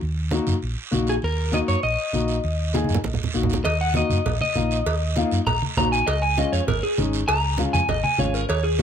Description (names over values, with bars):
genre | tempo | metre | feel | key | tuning
latin, cumbia | 198 BPM | 4/4 | straight | Eb minor | A4 = 439 Hz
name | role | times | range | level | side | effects
fingered electric bass | bass | 0.0-8.8 s | Ab1 to Gb2 | -25 LUFS | equal | none
congas | percussion | 0.0-8.8 s | none | -28 LUFS | right 2 dB | none
guiro | percussion | 0.0-8.8 s | none | -34 LUFS | right 7 dB | none
warm upright piano | accompaniment | 0.3-8.8 s | Ab3 to Ab4 | -25 LUFS | left 3 dB | none
electric guitar at the edge of break-up | melody | 1.1-8.8 s | Gb4 to Bb5 | -24 LUFS | left 1 dB | spring reverb
cowbell and timbales | percussion | 3.7-8.6 s | none | -30 LUFS | right 4 dB | none
room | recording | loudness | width
little or no reverb | close, detailed microphones | -20 LUFS | side -8 dB against mid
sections
0.0-3.7 A section; 3.7-8.8 B section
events
drum fill 2.7-3.7; clean electric guitar solo 3.7-8.8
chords
0.0 Ebm; 6.1 Db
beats
| 0.02 0.32 0.62 0.93 | 1.23 1.53 1.83 2.14 | 2.44 2.74 3.05 3.35 | 3.65 3.96 4.26 4.56 | 4.87 5.17 5.47 5.77 | 6.08 6.38 6.68 6.98 | 7.29 7.59 7.89 8.19 | 8.50 8.80